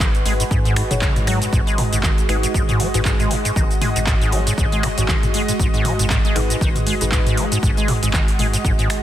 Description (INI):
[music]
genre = acid house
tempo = 118 BPM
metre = 4/4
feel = swing 57% on 16ths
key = G# minor pentatonic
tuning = A4 = 444 Hz
[part]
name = lush unison pad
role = sustained chords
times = 0.0-9.0 s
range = G#3 to D#5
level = -25 LUFS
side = right 2 dB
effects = chorus, phaser, sidechain pumping
[part]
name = acid bass, square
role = riff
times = 0.0-8.9 s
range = F#2 to G#3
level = -22 LUFS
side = equal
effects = overdrive, ensemble chorus, ping-pong delay
[part]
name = deep mellow chord stab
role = stabs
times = 0.0-8.4 s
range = D#4 to C#5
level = -30 LUFS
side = left 4 dB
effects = chorus, phaser, ping-pong delay
[part]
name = round analog bass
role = bass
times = 0.0-8.7 s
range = F#1 to G#2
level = -24 LUFS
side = equal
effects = sidechain pumping
[part]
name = electro analog drum machine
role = drums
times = 0.0-9.0 s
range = finger snaps, handclaps, hi-hat, shaker, toms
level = -24 LUFS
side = equal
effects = none
[part]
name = electronic kick drum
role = drums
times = 0.0-8.8 s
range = none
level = -20 LUFS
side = equal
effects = none
[sound]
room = little or no reverb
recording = dense, heavily limited modern master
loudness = -16 LUFS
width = side -12 dB against mid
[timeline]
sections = 0.0-9.0 A section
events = none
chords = 0.0 G#m7